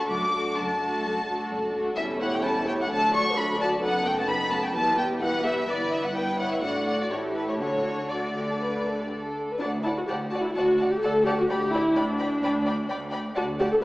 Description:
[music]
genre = quick classical-period movement for string orchestra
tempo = 128 BPM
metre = 4/4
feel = rubato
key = D major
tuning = A4 = 436 Hz
[part]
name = muted studio violin section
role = melody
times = 0.0-13.8 s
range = B4 to D6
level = -28 LUFS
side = left 1 dB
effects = none
[part]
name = muted studio violin section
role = second line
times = 0.0-13.7 s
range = E4 to G5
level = -30 LUFS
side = left 1 dB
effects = none
[part]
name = muted studio viola section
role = accompaniment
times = 0.0-13.8 s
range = F#3 to A4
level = -27 LUFS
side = equal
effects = none
[part]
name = muted studio double bass section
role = bass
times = 0.0-13.8 s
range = E1 to D2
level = -39 LUFS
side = equal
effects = none
[part]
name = muted studio cello section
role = bass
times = 0.1-13.8 s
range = D2 to D3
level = -34 LUFS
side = right 1 dB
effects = none
[sound]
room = wet recital hall reverb, RT60 1.5 s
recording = recorded in a church or concert hall, small speaker sound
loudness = -23 LUFS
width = side -19 dB against mid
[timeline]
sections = 0.0-9.6 A section; 9.6-13.8 B section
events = none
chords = 0.1 D/F#; 2.0 A7/E; 2.9 D; 3.8 B7/F#; 4.8 Em; 5.7 Em/G; 6.6 D/A; 7.1 A7(no3); 7.6 D; 11.5 G/D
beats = | 0.10 0.56 1.03 1.50 | 1.97 2.44 2.90 3.36 | 3.82 4.29 4.75 5.22 | 5.69 6.16 6.64 7.12 | 7.61 8.12 8.62 9.12 | 9.61 10.09 10.56 11.03 | 11.50 11.97 12.43 12.90 | 13.37 13.83

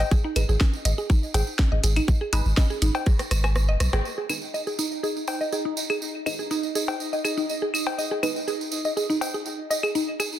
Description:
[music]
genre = minimal techno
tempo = 122 BPM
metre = 4/4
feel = straight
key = G# minor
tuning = A4 = 440 Hz
[part]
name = mallet-like synth pluck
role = riff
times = 0.0-10.2 s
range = D#4 to G#5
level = -28 LUFS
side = equal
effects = chorus, sidechain pumping, dub echo
[part]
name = punchy sub bass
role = bass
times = 0.0-4.0 s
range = F#1 to B1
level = -22 LUFS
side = equal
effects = sidechain pumping
[part]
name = garage drum kit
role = drums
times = 0.0-4.0 s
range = hi-hat, rim click, snare drum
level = -30 LUFS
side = right 1 dB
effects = overdrive
[part]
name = cowbell and claves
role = percussion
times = 0.0-10.3 s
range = none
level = -32 LUFS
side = left 4 dB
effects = dub echo
[part]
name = tambourine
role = percussion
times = 0.0-10.4 s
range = none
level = -33 LUFS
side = right 5 dB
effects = none
[part]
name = electronic kick drum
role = drums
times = 0.1-3.2 s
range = none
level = -20 LUFS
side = equal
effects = overdrive
[part]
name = filtered dub chord stab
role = stabs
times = 0.4-8.3 s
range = D#4 to B4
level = -34 LUFS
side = right 1 dB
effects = phaser, vintage 12-bit sampler grit, dub echo
[part]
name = pulsing gated texture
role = texture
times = 4.4-10.4 s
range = D#4 to D#5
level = -32 LUFS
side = right 1 dB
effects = chorus, built-in reverb, sidechain pumping
[sound]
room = light reverb, digital ambience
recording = dense, heavily limited modern master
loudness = -22 LUFS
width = side -12 dB against mid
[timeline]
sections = 0.0-4.0 A section; 4.0-10.4 B section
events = filter sweep on synth arpeggio sound 0.0-4.0; drum fill 3.1-4.0; kick drops out 3.6-4.0; band accent 3.9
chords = 0.0 G#5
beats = | 0.12 0.61 1.10 1.59 | 2.08 2.57 3.06 3.56 | 4.05 4.54 5.03 5.52 | 6.02 6.51 7.00 7.49 | 7.98 8.47 8.97 9.46 | 9.95

